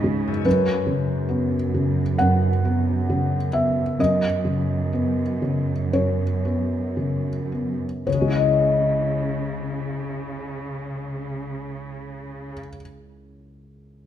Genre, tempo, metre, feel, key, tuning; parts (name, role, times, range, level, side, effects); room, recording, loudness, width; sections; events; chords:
cinematic, emotional film score for orchestra; 53-72 BPM; 4/4; rubato; C# minor; A4 = 442 Hz
felt-muted upright piano; accompaniment; 0.0-14.1 s; C#2 to F#5; -22 LUFS; equal
warm studio cello section; bass; 0.0-12.5 s; F#2 to C#3; -28 LUFS; right 4 dB
concert harp; arpeggios; 0.3-12.8 s; F#2 to D#5; -26 LUFS; left 6 dB
moderate scoring stage reverb, RT60 1.6 s; close, detailed microphones; -20 LUFS; side -10 dB against mid
0.0-8.1 A section; 8.1-12.5 B section
slowing down 0.0-8.1
0.5 F#sus4; 8.1 C#madd9